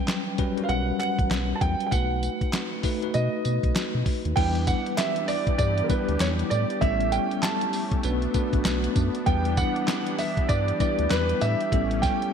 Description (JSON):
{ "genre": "R&B, new jack swing", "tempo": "98 BPM", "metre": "4/4", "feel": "swing 61% on 16ths", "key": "E dorian", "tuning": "A4 = 440 Hz", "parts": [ { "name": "dark concert grand piano", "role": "melody", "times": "0.0-12.3 s", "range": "A#4 to A5", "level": "-28 LUFS", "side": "right 4 dB", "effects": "wide subtle chorus" }, { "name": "bell-like tine electric piano", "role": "accompaniment", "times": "0.0-12.3 s", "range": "F#3 to B4", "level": "-28 LUFS", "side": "left 2 dB", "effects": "fast stereo tremolo" }, { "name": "clean 12-bit digital drum machine", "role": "drums", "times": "0.1-12.3 s", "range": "crash cymbal, handclaps, hi-hat, kick drum, snare drum, tambourine", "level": "-27 LUFS", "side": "equal", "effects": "gated reverb" }, { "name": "group handclap", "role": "percussion", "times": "0.1-11.3 s", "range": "none", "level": "-42 LUFS", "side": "left 3 dB", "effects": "none" }, { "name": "round analog bass", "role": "bass", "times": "0.7-12.1 s", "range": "A1 to B2", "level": "-27 LUFS", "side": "equal", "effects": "none" }, { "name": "brassy analog pad", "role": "sustained chords", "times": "4.4-12.3 s", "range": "E3 to G4", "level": "-33 LUFS", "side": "left 2 dB", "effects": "chorus" } ], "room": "light reverb, digital ambience", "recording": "bright 1980s-style digital production", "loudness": "-22 LUFS", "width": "side -7 dB against mid", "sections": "0.0-4.4 A section; 4.4-12.3 B section", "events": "none", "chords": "0.0 A13 (rootless); 1.9 B7; 4.4 Em7; 6.8 A9; 8.0 Bm7; 9.3 Em7; 11.7 A9" }